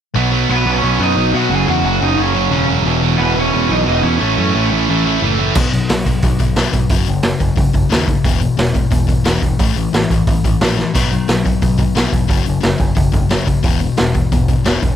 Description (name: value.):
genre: punk rock.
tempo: 178 BPM.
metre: 4/4.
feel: straight.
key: B major.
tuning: A4 = 439 Hz.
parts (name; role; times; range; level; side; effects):
sludgy distorted guitar; riff; 0.1-15.0 s; E2 to B3; -18 LUFS; left 7 dB; overdrive.
distorted electric guitar; riff; 0.2-5.6 s; E2 to B3; -18 LUFS; right 16 dB; overdrive.
growling picked electric bass; bass; 0.2-14.9 s; E1 to B2; -19 LUFS; right 1 dB; overdrive.
raw garage guitar; melody; 0.5-5.2 s; B3 to G#5; -19 LUFS; right 1 dB; overdrive, ping-pong delay.
raw garage drum kit; drums; 5.6-14.9 s; crash cymbal, hi-hat, kick drum, snare drum, splash cymbal; -15 LUFS; right 1 dB; none.
room: light reverb.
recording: none.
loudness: -12 LUFS.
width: side -10 dB against mid.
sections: 0.2-5.6 A section; 5.6-15.0 B section.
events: drum fill 10.8.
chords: 0.2 B; 1.5 F#5; 2.9 E5; 4.2 A; 5.6 B5; 6.9 F#5; 8.3 E5; 9.6 A5; 10.9 B5; 12.3 F#5; 13.6 E5.